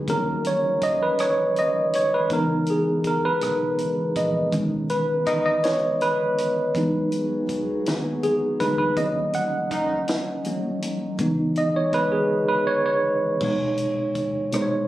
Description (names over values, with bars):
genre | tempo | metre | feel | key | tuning
slow six-eight R&B | 54 BPM (dotted quarters) | 6/8 | straight | B major | A4 = 438 Hz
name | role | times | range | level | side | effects
tine electric piano | accompaniment | 0.0-14.9 s | B2 to F#5 | -21 LUFS | equal | overdrive, fast stereo tremolo, plate reverb
warbly tape-like pad | sustained chords | 0.0-13.4 s | C#3 to G#4 | -34 LUFS | equal | chorus, built-in reverb
fingered electric bass | bass | 0.0-14.9 s | A#1 to E2 | -32 LUFS | equal | none
compact cocktail drum kit | drums | 0.1-14.7 s | crash cymbal, hi-hat, kick drum, rim click, snare drum | -32 LUFS | left 1 dB | none
mellow horn section | stabs | 5.3-5.6, 9.7-10.0 s | D#3 to D#4 | -28 LUFS | equal | plate reverb
room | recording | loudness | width
moderate studio reverb, RT60 0.5 s | recorded on a phone in the room, club reverb, compression | -20 LUFS | side -14 dB against mid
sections
0.0-13.4 A section; 13.4-14.9 B section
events
tine electric piano solo 0.0-13.4; drums muted 12.3-13.4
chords
0.1 D#m7; 2.3 C#m7; 4.5 B69; 6.7 Emaj9; 9.0 D#m7; 11.2 C#m7; 13.4 B69